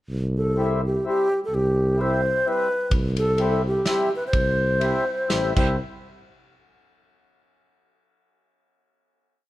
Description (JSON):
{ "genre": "alpine folk, alpine dance band", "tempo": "127 BPM", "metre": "3/4", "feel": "swing 55% on 8ths, rubato", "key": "C major", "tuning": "A4 = 438 Hz", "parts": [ { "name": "mellow tuba", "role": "bass", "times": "0.1-5.8 s", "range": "A1 to C2", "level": "-25 LUFS", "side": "equal", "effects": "none" }, { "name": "wooden-headed alto flute", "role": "melody", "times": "0.4-5.8 s", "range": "G4 to C5", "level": "-23 LUFS", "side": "equal", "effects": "none" }, { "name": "mellow accordion", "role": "accompaniment", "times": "0.6-5.8 s", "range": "G3 to E4", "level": "-28 LUFS", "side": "left 3 dB", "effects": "none" }, { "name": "loose indie drum kit", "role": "drums", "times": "2.9-5.7 s", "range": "crash cymbal, kick drum, ride cymbal, snare drum", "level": "-25 LUFS", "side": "right 1 dB", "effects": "none" } ], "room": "light reverb", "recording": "dark, warm production", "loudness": "-20 LUFS", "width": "side -16 dB against mid", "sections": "0.1-5.8 A section; 5.8-7.2 final hit", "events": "none", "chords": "0.1 C; 5.8 N.C." }